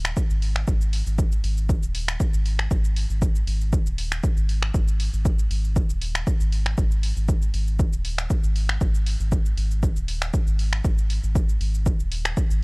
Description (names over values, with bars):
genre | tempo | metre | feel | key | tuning
dub techno | 118 BPM | 4/4 | swing 53% on 16ths | unclear | A4 = 441 Hz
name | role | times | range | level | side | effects
round analog bass | bass | 0.0-12.6 s | D#1 to G#1 | -24 LUFS | equal | sidechain pumping
punchy analog drum machine | drums | 0.0-12.6 s | finger snaps, hi-hat, shaker | -30 LUFS | equal | none
electronic kick drum | drums | 0.2-12.5 s | none | -22 LUFS | equal | none
room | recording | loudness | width
digital ambience | dry, gritty hardware recording, cassette tape | -21 LUFS | side -34 dB against mid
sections
0.0-12.6 A section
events
none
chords
none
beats
0.17 0.68 | 1.19 1.69 2.20 2.71 | 3.22 3.73 4.24 4.74 | 5.25 5.76 6.27 6.78 | 7.29 7.79 8.30 8.81 | 9.32 9.83 10.34 10.85 | 11.36 11.86 12.37